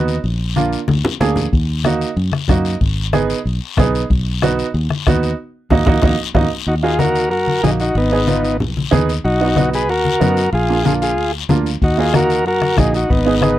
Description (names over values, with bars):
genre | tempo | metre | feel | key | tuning
latin, cumbia | 186 BPM | 4/4 | straight | Eb minor | A4 = 440 Hz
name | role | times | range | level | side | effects
warm upright piano | accompaniment | 0.0-13.6 s | Bb3 to Ab4 | -19 LUFS | right 5 dB | none
fingered electric bass | bass | 0.0-13.6 s | Ab1 to Gb2 | -19 LUFS | equal | none
guiro | percussion | 0.1-13.6 s | none | -29 LUFS | left 11 dB | none
congas | percussion | 0.6-13.6 s | none | -20 LUFS | left 3 dB | none
bombo | percussion | 1.5-6.4, 11.8-13.6 s | none | -18 LUFS | left 1 dB | none
combo organ | melody | 6.7-13.6 s | Cb4 to B4 | -16 LUFS | left 1 dB | none
room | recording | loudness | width
light reverb | dry, close 1970s-style studio recording | -14 LUFS | side -14 dB against mid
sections
0.0-6.7 A section; 6.7-13.6 B section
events
drum fill 0.9-1.5, 6.2-6.7; band accent 5.4-6.7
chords
0.2 Bb7; 1.5 Ebm; 2.8 Abm; 4.1 B; 5.4 Ebm; 8.0 Abm; 9.2 B; 10.5 Bb7; 11.8 Ebm